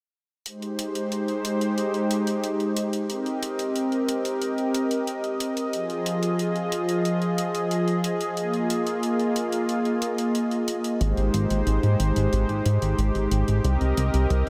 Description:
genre	synthwave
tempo	91 BPM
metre	4/4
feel	straight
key	unclear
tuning	A4 = 443 Hz
part	warm analog pad	sustained chords	0.5-14.5 s	F3 to Eb5	-27 LUFS	equal	chorus, vintage 12-bit sampler grit
part	electronic hi-hat	drums	0.5-14.5 s	none	-38 LUFS	equal	overdrive
part	chorused synth bass	bass	11.0-14.5 s	Ab1 to Ab2	-24 LUFS	equal	none
room	moderate huge ambient reverb, RT60 9.7 s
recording	dreamy mix soaked in reverb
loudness	-25 LUFS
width	mono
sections	0.5-14.5 A section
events	none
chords	0.5 Abmaj7; 3.1 Cm7; 5.7 Fm7; 8.4 Bb7sus4; 11.0 Abmaj7; 13.6 Cm7

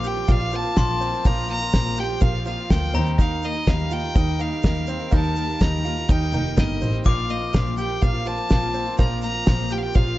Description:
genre	indie folk with a building arrangement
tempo	124 BPM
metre	4/4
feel	straight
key	Bb major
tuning	A4 = 441 Hz
part	clear fiddle	melody	0.0-10.2 s	Eb5 to Bb5	-28 LUFS	left 1 dB	none
part	glockenspiel with brass mallets	second line	0.0-10.2 s	Bb5 to D6	-34 LUFS	left 5 dB	none
part	clear concert grand piano	accompaniment	0.0-10.2 s	Bb1 to F5	-34 LUFS	right 1 dB	none
part	fingerpicked steel-string acoustic guitar	accompaniment	0.0-1.2 s	none	barely audible	none	none
part	picked twelve-string acoustic guitar	accompaniment	0.0-10.2 s	Bb2 to G4	-32 LUFS	left 6 dB	none
part	bright upright piano	arpeggios	0.0-10.2 s	C4 to G4	-30 LUFS	right 6 dB	none
part	warm double bass	bass	0.0-10.1 s	F1 to Eb2	-26 LUFS	equal	none
part	tube shaker	percussion	0.0-10.1 s	none	-48 LUFS	right 9 dB	none
part	cloth-damped thuddy drum kit	drums	0.3-10.1 s	kick drum, snare drum	-20 LUFS	equal	none
room	little or no reverb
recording	dark, warm production, nothing above 7.7 kHz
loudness	-19 LUFS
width	side -16 dB against mid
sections	0.0-10.2 A section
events	none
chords	0.0 Bbsus2; 2.9 Eb; 7.1 Bbsus2

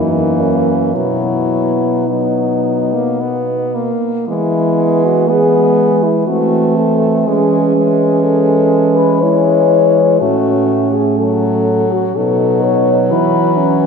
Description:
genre	classical, lyrical piece for horn quartet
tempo	52-66 BPM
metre	3/4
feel	rubato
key	B major, E major from 4.3 s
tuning	A4 = 440 Hz
part	warm French horn	melody	0.0-13.8 s	C#4 to C#5	-16 LUFS	left 6 dB	none
part	mellow French horn	second line	0.0-13.9 s	G#3 to E4	-18 LUFS	right 5 dB	none
part	clear French horn	accompaniment	0.0-13.9 s	E3 to B3	-18 LUFS	left 1 dB	none
part	dark French horn	bass	0.0-13.9 s	F#2 to E3	-17 LUFS	right 2 dB	none
room	wet church reverb, RT60 3.2 s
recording	minimal, uncompressed stereo recording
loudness	-11 LUFS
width	side -6 dB against mid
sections	0.0-4.3 A section; 4.3-13.9 B section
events	none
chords	0.0 F#7; 1.0 B; 4.3 E; 6.3 Am6/E; 7.3 C#m/E; 10.2 F#m/A; 12.2 B9; 13.1 E5

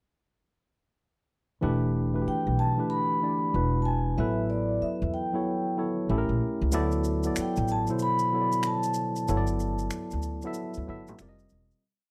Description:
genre	R&B, neo-soul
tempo	94 BPM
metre	4/4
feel	swing 63% on 16ths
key	E minor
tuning	A4 = 439 Hz
part	tine electric piano	accompaniment	1.6-11.8 s	B2 to E5	-32 LUFS	equal	none
part	upright bass	bass	1.6-11.7 s	E1 to E2	-31 LUFS	equal	none
part	vibraphone with soft mallets	melody	2.3-11.2 s	D5 to B5	-32 LUFS	equal	slapback echo
part	maracas and finger snaps	percussion	6.7-11.8 s	none	-42 LUFS	equal	none
room	light reverb, small room ambience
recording	none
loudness	-28 LUFS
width	mono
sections	1.6-11.8 verse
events	fade-out 9.3-11.8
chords	1.6 Em9; 3.5 E9; 4.2 A13; 6.1 A7b9; 6.7 D9; 9.3 Gmaj9; 11.2 Fsus2

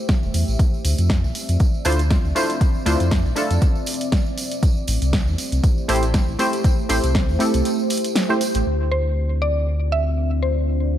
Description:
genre	deep house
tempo	119 BPM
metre	4/4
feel	swing 55% on 16ths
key	D minor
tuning	A4 = 440 Hz
part	deep dark ambient pad	sustained chords	0.0-11.0 s	F3 to E5	-27 LUFS	equal	chorus, built-in reverb, sidechain pumping
part	filtered dub chord stab	stabs	0.0-8.4 s	A3 to C5	-23 LUFS	equal	chorus, sidechain pumping, tape echo
part	electronic kick drum	drums	0.1-7.3 s	none	-18 LUFS	equal	small room ambience
part	punchy analog drum machine	drums	0.1-8.6 s	hi-hat, snare drum	-26 LUFS	equal	overdrive, low-pass filter on hats, small room ambience, low-pass filter on snare
part	tambourine	percussion	0.1-8.6 s	none	-34 LUFS	right 4 dB	none
part	sub bass with octave	bass	0.2-11.0 s	E1 to F2	-20 LUFS	equal	tube saturation, sidechain pumping
part	mallet-like synth pluck	melody	8.9-11.0 s	C5 to E5	-25 LUFS	equal	chorus, tape echo
room	light reverb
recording	none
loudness	-18 LUFS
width	side -11 dB against mid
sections	0.0-8.7 A section; 8.7-11.0 B section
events	kick drops out 7.7-8.7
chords	0.0 Am7; 0.6 Dm9; 4.6 Am7; 8.7 Dm9

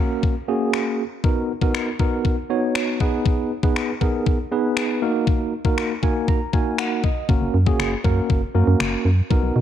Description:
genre	dance-pop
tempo	119 BPM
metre	4/4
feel	straight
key	F# major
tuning	A4 = 438 Hz
part	tine electric piano	accompaniment	0.0-9.6 s	A#3 to A#5	-22 LUFS	right 1 dB	medium stereo tremolo, sidechain pumping
part	gated 80s digital drum machine	drums	0.2-9.4 s	finger snaps, kick drum	-21 LUFS	left 2 dB	none
part	organ-like FM bass	bass	7.3-9.6 s	F#1 to B2	-19 LUFS	right 1 dB	sidechain pumping
room	light reverb, digital ambience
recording	1960s-style stereo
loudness	-18 LUFS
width	side -10 dB against mid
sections	0.0-9.6 A section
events	tine electric piano fill 5.8-7.3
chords	0.0 F#; 1.2 Bmaj7; 3.0 G#m; 5.0 D#m; 7.3 F#

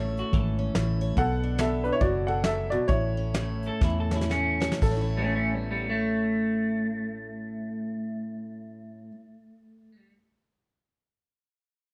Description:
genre	honky-tonk and classic country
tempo	114-143 BPM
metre	4/4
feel	swing 61% on 8ths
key	A major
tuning	A4 = 441 Hz
part	clear upright piano	melody	0.0-9.1 s	D4 to F#5	-32 LUFS	equal	none
part	picked steel-string acoustic guitar	accompaniment	0.0-9.3 s	A2 to C#5	-34 LUFS	equal	none
part	vintage muted fingered electric bass	bass	0.0-9.1 s	F#1 to E2	-32 LUFS	equal	none
part	electric guitar through a small old amp	second line	0.2-0.7, 3.7-10.1 s	G3 to A4	-33 LUFS	equal	lush chorus, analog delay
part	soft brush drum kit	drums	0.2-5.0 s	crash cymbal, hi-hat, kick drum, snare drum	-30 LUFS	equal	none
room	light reverb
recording	none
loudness	-27 LUFS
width	mono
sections	0.0-4.8 A section; 4.8-9.0 B section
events	slowing down 1.2-4.8; drum fill 3.8-4.8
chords	0.0 A; 1.2 Bm7; 2.9 A

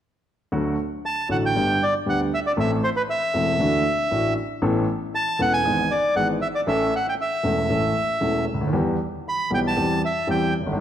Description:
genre	tango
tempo	117 BPM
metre	4/4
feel	rubato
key	D major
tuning	A4 = 441 Hz
part	warm grand piano	accompaniment	0.5-10.8 s	E1 to A4	-23 LUFS	equal	none
part	bandoneon	melody	1.1-10.5 s	B4 to B5	-23 LUFS	right 1 dB	none
room	wet recital hall reverb, RT60 1.8 s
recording	none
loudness	-20 LUFS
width	side -10 dB against mid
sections	0.5-10.8 A section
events	none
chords	0.5 D; 1.6 G; 2.6 Am; 3.6 Dadd9; 4.6 Aadd9; 5.7 E/G#; 6.7 A; 8.7 Em; 9.8 C/E

